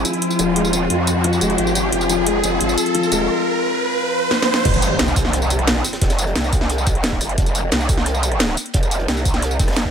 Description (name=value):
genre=dark technical drum and bass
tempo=176 BPM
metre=4/4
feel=straight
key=F minor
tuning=A4 = 440 Hz
part: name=metallic inharmonic drone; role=sustained chords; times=0.0-4.6 s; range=F3 to F4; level=-23 LUFS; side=left 4 dB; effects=chorus, built-in reverb, phaser, sidechain pumping
part: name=growl bass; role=bass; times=0.0-9.9 s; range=Eb1 to F2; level=-21 LUFS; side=equal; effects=chorus, overdrive, sidechain pumping
part: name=drum and bass drum kit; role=drums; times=0.0-9.8 s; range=crash cymbal, hi-hat, rim click, snare drum, tambourine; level=-21 LUFS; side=equal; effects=none
part: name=riser and impact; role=sound effects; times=0.0-6.0 s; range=none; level=-22 LUFS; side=right 2 dB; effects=none
part: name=felt-muted upright piano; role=arpeggios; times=0.1-3.2 s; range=F3 to Ab3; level=-22 LUFS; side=left 2 dB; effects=sidechain pumping, ping-pong delay
part: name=crunchy breakbeat drum kit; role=drums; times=4.7-9.9 s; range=hi-hat, snare drum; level=-32 LUFS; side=right 1 dB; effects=none
part: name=electronic kick drum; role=drums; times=4.7-9.9 s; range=none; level=-19 LUFS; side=equal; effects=none
room=moderate lush hall reverb, RT60 1.7 s, digital ambience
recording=none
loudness=-16 LUFS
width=side -8 dB against mid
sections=0.0-4.7 A section; 4.7-9.9 B section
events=build-up 0.0-4.7; riser 0.0-4.7; drum fill 4.3-4.7; drop 4.7-9.9; impact 4.7-6.0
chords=0.0 Fm; 4.7 F5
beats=0.22 | 0.56 0.90 1.24 1.58 | 1.93 2.27 2.61 2.95 | 3.29 3.63 3.97 4.31 | 4.65 4.99 5.33 5.67 | 6.02 6.36 6.70 7.04 | 7.38 7.72 8.06 8.40 | 8.74 9.08 9.43 9.77